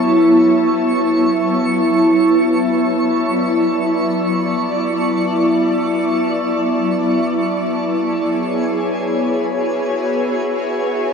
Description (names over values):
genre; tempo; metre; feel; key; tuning
ambient; free time; none; none; unclear; A4 = 440 Hz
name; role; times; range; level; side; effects
granular cloud pad; sustained chords; 0.0-11.1 s; F#3 to A5; -15 LUFS; equal; built-in reverb
twinkling granular texture; texture; 0.0-11.1 s; G#5 to C#6; -26 LUFS; right 3 dB; built-in reverb
room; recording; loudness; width
wet shimmer reverb, RT60 7.8 s; worn, warbling old tape, cassette tape, warbly pitch drift; -14 LUFS; side -6 dB against mid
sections
0.0-11.1 A section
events
fade-out on synth texture 0.0-11.1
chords
0.0 Asus2; 2.6 Bmadd9; 7.9 C#m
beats
free time